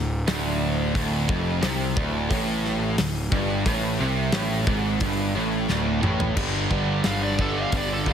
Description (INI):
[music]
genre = hard rock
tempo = 88 BPM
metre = 4/4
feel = straight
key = D minor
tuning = A4 = 441 Hz
[part]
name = high-gain distorted guitar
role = riff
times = 0.0-8.1 s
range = D2 to G3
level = -31 LUFS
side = left 1 dB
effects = distortion
[part]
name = overdriven electric guitar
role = riff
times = 0.0-8.1 s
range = D2 to G3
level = -30 LUFS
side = left 11 dB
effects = none
[part]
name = overdriven semi-hollow guitar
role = riff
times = 0.0-8.1 s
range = D2 to G3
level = -28 LUFS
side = right 10 dB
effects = spring reverb
[part]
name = fuzz picked electric bass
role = bass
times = 0.0-8.1 s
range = D1 to C2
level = -27 LUFS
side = equal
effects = overdrive
[part]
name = big rock drum kit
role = drums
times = 0.3-8.1 s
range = crash cymbal, hi-hat, kick drum, snare drum, toms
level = -28 LUFS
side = equal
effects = none
[part]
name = nasal lead guitar with a parked wah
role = melody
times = 7.1-8.1 s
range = A4 to F5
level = -28 LUFS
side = equal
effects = overdrive, digital delay
[sound]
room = light reverb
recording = heavily compressed radio sound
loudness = -21 LUFS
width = side -8 dB against mid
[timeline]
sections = 0.0-6.4 A section; 6.4-8.1 B section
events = drum fill 5.7-6.4; lead electric guitar solo 6.4-8.1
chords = 0.0 Dm; 6.4 G5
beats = 0.28 | 0.95 1.63 2.31 2.99 | 3.66 4.34 5.02 5.70 | 6.38 7.06 7.74